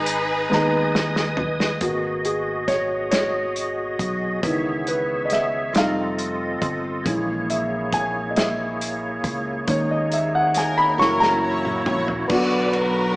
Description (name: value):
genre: slow gospel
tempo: 46 BPM (dotted quarters)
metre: 6/8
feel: straight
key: G# minor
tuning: A4 = 438 Hz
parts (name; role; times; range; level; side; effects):
- clear studio string section; melody; 0.0-1.4, 10.6-13.2 s; C#4 to D5; -25 LUFS; left 1 dB; none
- warm concert grand piano; accompaniment; 0.0-13.2 s; G#2 to C#6; -23 LUFS; equal; none
- bright tonewheel organ; sustained chords; 0.0-13.2 s; B2 to D#6; -26 LUFS; equal; slow rotary speaker, chorus vibrato
- fingered electric bass; bass; 0.0-13.2 s; F1 to D#2; -30 LUFS; equal; none
- warm soul drum kit; drums; 0.1-12.9 s; crash cymbal, hi-hat, kick drum, ride cymbal, snare drum, toms; -26 LUFS; equal; none
room: wet large studio reverb, RT60 1.2 s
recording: band playing live in one room, small speaker sound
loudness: -19 LUFS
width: side -21 dB against mid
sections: 0.0-1.8 A section; 1.8-12.3 B section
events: drum fill 0.5-1.8, 11.0-12.3; grand piano solo 1.8-12.3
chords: 0.0 G#m; 1.8 G#m7; 4.4 C#m7; 5.7 F7; 7.1 A#m7b5; 9.7 D#7sus4; 11.0 F#7; 12.3 Bm